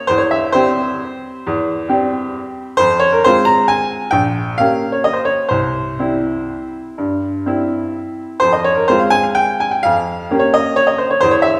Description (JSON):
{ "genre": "classical, piano waltz", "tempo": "120-141 BPM", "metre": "3/4", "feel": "rubato", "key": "unclear", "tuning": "A4 = 436 Hz", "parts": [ { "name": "bright upright piano", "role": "solo", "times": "0.0-11.6 s", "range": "Bb1 to Bb5", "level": "-16 LUFS", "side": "equal", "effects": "none" } ], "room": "wet recital hall reverb, RT60 1.4 s", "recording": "heard from further back in the room", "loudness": "-16 LUFS", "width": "mono", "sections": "0.0-11.6 A section", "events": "none", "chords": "0.1 C/E; 2.8 Fm; 4.1 Gdim/Bb; 5.5 C; 8.4 Fm; 9.9 Gm7b5/F" }